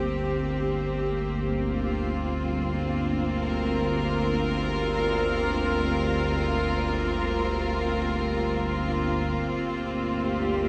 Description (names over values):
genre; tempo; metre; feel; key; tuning
dark ambient drone; free time; none; none; G minor; A4 = 440 Hz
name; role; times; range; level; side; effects
rich studio cello section; sustained chords; 0.0-10.7 s; Bb3 to Bb4; -29 LUFS; equal; none
analog drone; drone; 0.0-10.7 s; G1 to D2; -31 LUFS; equal; chorus
bronze singing bowl; texture; 0.0-10.7 s; none; barely audible; none; none
room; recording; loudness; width
moderate plate reverb, RT60 2.6 s; small room ambience; -27 LUFS; mono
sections
0.0-9.3 A section; 9.3-10.7 B section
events
none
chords
0.0 Gm